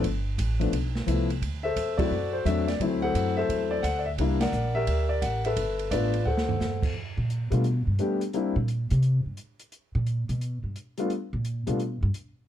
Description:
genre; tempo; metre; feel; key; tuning
jazz piano trio; 174 BPM; 4/4; swing 65% on 8ths; G major; A4 = 440 Hz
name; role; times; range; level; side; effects
warm concert grand piano; melody; 0.0-8.5, 11.0-11.8 s; F3 to F#5; -27 LUFS; left 3 dB; none
upright bass; bass; 0.0-12.1 s; G1 to C3; -27 LUFS; right 1 dB; none
open jazz drum kit; drums; 0.0-12.2 s; crash cymbal, hi-hat, kick drum, ride cymbal, snare drum, toms; -34 LUFS; right 3 dB; none
room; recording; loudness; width
little or no reverb; dark, warm production; -24 LUFS; side -11 dB against mid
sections
0.0-7.0 A section; 7.0-12.5 B section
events
band accent 1.9, 4.4; drum fill 6.3-6.6; upright bass solo 7.0-12.5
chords
0.0 G9; 1.4 D9; 4.2 C9; 5.6 G9; 6.3 D9; 7.0 Gadd9; 8.3 C7(no3); 9.7 N.C.

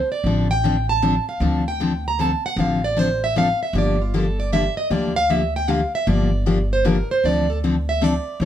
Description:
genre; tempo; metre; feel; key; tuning
acoustic string swing (jazz manouche); 154 BPM; 3/4; swing 63% on 8ths; D minor; A4 = 440 Hz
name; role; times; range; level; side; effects
picked plugged-in steel-string acoustic guitar; melody; 0.0-8.4 s; F4 to Bb5; -22 LUFS; right 2 dB; none
upright bass; bass; 0.2-8.4 s; G1 to D2; -23 LUFS; equal; none
picked steel-string acoustic guitar; accompaniment; 0.3-8.4 s; D3 to A4; -21 LUFS; left 3 dB; none
room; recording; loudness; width
light reverb; none; -18 LUFS; side -10 dB against mid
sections
0.0-8.4 A section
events
steel-string acoustic guitar solo 0.0-8.4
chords
0.0 Dm7; 3.7 Gm7; 7.2 Dm7

